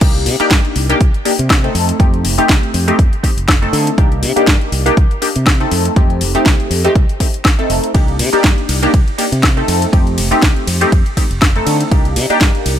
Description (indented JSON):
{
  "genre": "filtered disco house",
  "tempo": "121 BPM",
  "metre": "4/4",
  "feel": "swing 56% on 16ths",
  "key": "C dorian",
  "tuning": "A4 = 442 Hz",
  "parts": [
    { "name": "funky polysynth comp", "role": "accompaniment", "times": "0.0-12.8 s", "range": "A3 to A4", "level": "-16 LUFS", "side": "left 1 dB", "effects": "chorus, phaser, cassette tape, sidechain pumping, low-pass filter" },
    { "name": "modern bright fingered electric bass", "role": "bass", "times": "0.0-12.8 s", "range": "F1 to D3", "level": "-18 LUFS", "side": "equal", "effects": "sidechain pumping, low-pass filter" },
    { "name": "electronic kick drum", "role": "drums", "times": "0.0-12.5 s", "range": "none", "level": "-12 LUFS", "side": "equal", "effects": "overdrive" },
    { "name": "house drum kit", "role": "drums", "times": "0.0-12.8 s", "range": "crash cymbal, hi-hat, ride cymbal, snare drum, woodblock", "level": "-18 LUFS", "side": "left 1 dB", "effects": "overdrive, sidechain pumping on hats, sidechain pumping on perc, sidechain pumping on cymbals" }
  ],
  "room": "little or no reverb",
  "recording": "none",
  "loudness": "-11 LUFS",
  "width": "side -10 dB against mid",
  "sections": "0.0-12.8 A section",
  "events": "drop 0.0-12.8",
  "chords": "0.0 Cm9; 1.7 F9; 4.0 Cm9; 5.7 F9; 7.9 Cm9; 9.7 F9; 11.9 Cm9"
}